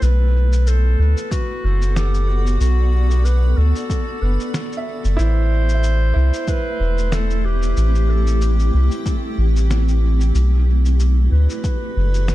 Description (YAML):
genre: ambient dub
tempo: 93 BPM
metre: 4/4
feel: swing 56% on 16ths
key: unclear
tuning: A4 = 440 Hz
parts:
  - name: warm clarinet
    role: melody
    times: 0.0-12.3 s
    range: F#4 to C5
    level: -28 LUFS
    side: left 1 dB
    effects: tape echo
  - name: granular cloud pad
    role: sustained chords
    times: 0.0-12.3 s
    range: A3 to B5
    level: -28 LUFS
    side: equal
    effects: built-in reverb
  - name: felt-muted upright piano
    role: arpeggios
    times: 0.0, 4.8-10.4 s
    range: E4 to E5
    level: -31 LUFS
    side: right 6 dB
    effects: tape echo
  - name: soft dub sub bass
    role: bass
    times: 0.0-12.3 s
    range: E1 to D2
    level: -15 LUFS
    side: equal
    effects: none
  - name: electronic cabasa and snare drum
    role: drums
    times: 0.0-12.3 s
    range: none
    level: -30 LUFS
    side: equal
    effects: studio reverb, dub echo
  - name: electronic kick drum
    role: drums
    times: 1.3-11.8 s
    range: none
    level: -22 LUFS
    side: equal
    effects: studio reverb
room: digital ambience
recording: dark, warm production, faint mains hum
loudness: -15 LUFS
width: side -16 dB against mid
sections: 0.0-12.3 A section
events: none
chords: 0.0 Bm7; 5.2 Am7; 10.3 Bm7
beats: | 0.03 0.67 1.32 1.96 | 2.61 3.25 3.90 4.54 | 5.19 5.83 6.48 7.12 | 7.77 8.41 9.06 9.70 | 10.35 10.99 11.64 12.28